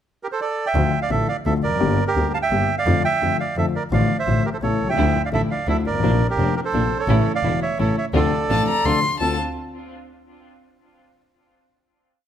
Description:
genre	tango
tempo	170 BPM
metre	3/4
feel	rubato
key	D minor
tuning	A4 = 442 Hz
part	bandoneon	melody	0.2-9.4 s	G4 to A5	-22 LUFS	right 4 dB	none
part	warm concert grand piano	accompaniment	0.7-9.4 s	E1 to G4	-23 LUFS	left 5 dB	none
part	clear double bass	bass	0.7-9.4 s	E1 to F2	-24 LUFS	right 1 dB	none
part	muted studio string section	stabs	5.0-9.4 s	F3 to F4	-29 LUFS	right 3 dB	tape echo
part	warm violin	second line	8.5-9.4 s	A5 to C6	-22 LUFS	left 3 dB	none
room	light reverb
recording	none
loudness	-18 LUFS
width	side -9 dB against mid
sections	0.0-0.8 pickup bar; 0.8-9.2 A section; 9.2-10.3 final chord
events	none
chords	0.0 Gsus2 (rootless); 0.8 Dm; 1.8 Gm; 2.9 Dm/F; 3.9 Dm/A; 4.6 A; 5.0 Dmadd9; 6.0 Bbadd9; 7.1 A; 8.1 Dm7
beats	0.05 0.40 | 0.75 1.11 1.46 | 1.81 2.16 2.52 | 2.87 3.22 3.57 | 3.92 4.27 4.62 | 4.98 5.33 5.68 | 6.04 6.39 6.74 | 7.09 7.44 7.79 | 8.14 8.50 8.85 | 9.21

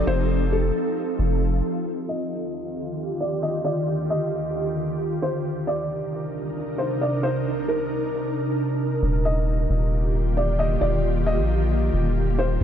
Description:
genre	hip hop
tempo	134 BPM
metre	4/4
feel	half-time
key	Eb major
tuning	A4 = 440 Hz
part	felt-muted upright piano	melody	0.0-12.6 s	A4 to Eb5	-28 LUFS	left 1 dB	low-pass filter, ping-pong delay
part	ethereal airy pad	sustained chords	0.0-12.6 s	C2 to Bb4	-25 LUFS	equal	ensemble chorus, built-in reverb, low-pass filter
part	long sustained 808-style bass	bass	0.0-1.6, 9.0-12.6 s	Eb1 to Bb1	-22 LUFS	equal	none
room	moderate lush hall reverb, RT60 1.9 s, small room ambience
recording	dreamy mix soaked in reverb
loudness	-22 LUFS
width	side -9 dB against mid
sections	0.0-1.9 A section; 1.9-9.0 B section; 9.0-12.6 C section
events	filter sweep 1.9-9.0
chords	0.0 F7; 1.9 Ebmaj7; 5.4 Cm7; 9.0 Ebmaj7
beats	| 0.07 0.52 0.97 1.42 | 1.86 2.31 2.76 3.21 | 3.65 4.10 4.55 5.00 | 5.45 5.89 6.34 6.79 | 7.24 7.68 8.13 8.58 | 9.03 9.48 9.92 10.37 | 10.82 11.27 11.71 12.16 | 12.61

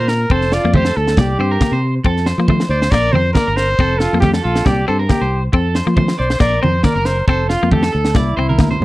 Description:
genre	highlife guitar band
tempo	138 BPM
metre	4/4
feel	swing 53% on 16ths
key	F major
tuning	A4 = 439 Hz
part	breathy trumpet	melody	0.0-8.8 s	E4 to D5	-19 LUFS	equal	none
part	electric guitar at the edge of break-up	arpeggios	0.0-8.8 s	F4 to D5	-23 LUFS	right 3 dB	slapback echo
part	fingered electric bass	bass	0.0-8.8 s	F1 to F3	-18 LUFS	equal	none
part	tight funk drum kit	drums	0.1-8.7 s	kick drum, snare drum	-17 LUFS	equal	none
part	clean electric guitar	accompaniment	0.3-8.7 s	A3 to C4	-21 LUFS	left 6 dB	none
part	congas	percussion	0.3-8.8 s	none	-20 LUFS	right 3 dB	none
room	small room ambience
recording	dry, close 1970s-style studio recording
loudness	-13 LUFS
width	side -17 dB against mid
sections	0.0-8.8 A section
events	drum fill 8.5-8.8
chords	0.3 F; 1.2 C5; 2.1 F; 2.9 Bb; 3.8 F; 4.7 C5; 5.5 F; 6.4 Bb; 7.3 F; 8.2 C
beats	| 0.31 0.74 1.18 1.61 | 2.05 2.49 2.92 3.36 | 3.79 4.23 4.67 5.10 | 5.54 5.97 6.41 6.85 | 7.29 7.72 8.16 8.60

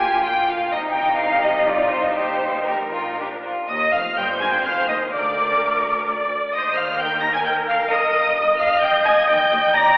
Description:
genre	quick classical-period movement for string orchestra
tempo	118-132 BPM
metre	3/4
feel	rubato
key	Eb major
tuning	A4 = 440 Hz
part	rich chamber violin section	melody	0.0-10.0 s	Bb4 to Bb6	-21 LUFS	equal	none
part	clear chamber violin section	second line	0.0-10.0 s	Eb4 to Bb5	-21 LUFS	equal	none
part	rich chamber viola section	accompaniment	0.0-10.0 s	F3 to Eb5	-22 LUFS	equal	none
part	rich studio cello section	bass	0.0-9.8 s	D2 to Eb3	-33 LUFS	equal	none
part	rich symphonic double bass section	bass	0.0-9.8 s	F1 to Eb2	-36 LUFS	equal	none
room	wet church reverb, RT60 2.5 s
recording	recorded in a church or concert hall, telephone sound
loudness	-17 LUFS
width	side -24 dB against mid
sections	0.0-3.7 A section; 3.7-10.0 B section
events	none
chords	0.0 Bb5; 0.7 Cm; 2.2 Eb/Bb; 3.2 Bb; 3.7 Eb; 5.1 Bb/D; 6.5 Eb5; 7.9 Eb/G; 9.3 Ebmaj7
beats	0.26 | 0.73 1.20 1.69 | 2.18 2.69 3.19 | 3.70 4.18 4.66 | 5.13 5.60 6.06 | 6.53 7.00 7.46 | 7.91 8.37 8.83 | 9.29 9.74

